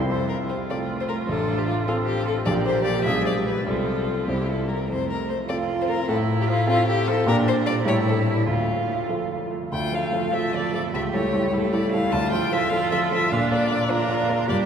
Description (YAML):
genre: quick classical-period movement for piano quartet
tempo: 101 BPM (dotted quarters)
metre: 6/8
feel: rubato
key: F major, D minor from 7.3 s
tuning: A4 = 440 Hz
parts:
  - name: warm baby grand piano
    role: accompaniment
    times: 0.0-14.7 s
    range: A1 to D5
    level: -24 LUFS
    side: equal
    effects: none
  - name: rich violin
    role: melody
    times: 0.1-14.6 s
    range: E4 to A5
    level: -26 LUFS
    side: left 3 dB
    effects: none
  - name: clear viola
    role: accompaniment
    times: 0.1-14.7 s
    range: F3 to G#4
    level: -32 LUFS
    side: right 2 dB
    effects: none
  - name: rich cello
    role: second line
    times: 0.7-14.7 s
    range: G#3 to A4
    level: -29 LUFS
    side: right 4 dB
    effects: none
room: wet cathedral reverb, RT60 4.4 s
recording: minimal, uncompressed stereo recording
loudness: -21 LUFS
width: side -7 dB against mid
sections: 0.1-9.7 A section; 9.7-14.7 B section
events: none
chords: 0.1 F; 1.3 F/A; 2.5 Gm7/Bb; 3.1 Bdim7; 3.7 F/C; 4.3 C; 4.9 F; 6.1 F/A; 7.3 Gm/Bb; 7.9 A5; 8.5 Dm; 10.9 A7/C#; 12.1 Dm; 13.3 Bb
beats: | 0.10 0.70 | 1.28 1.87 | 2.46 3.06 | 3.66 4.28 | 4.90 5.50 | 6.09 6.68 | 7.27 7.87 | 8.48 9.09 | 9.72 10.33 | 10.93 11.53 | 12.12 12.72 | 13.31 13.90 | 14.48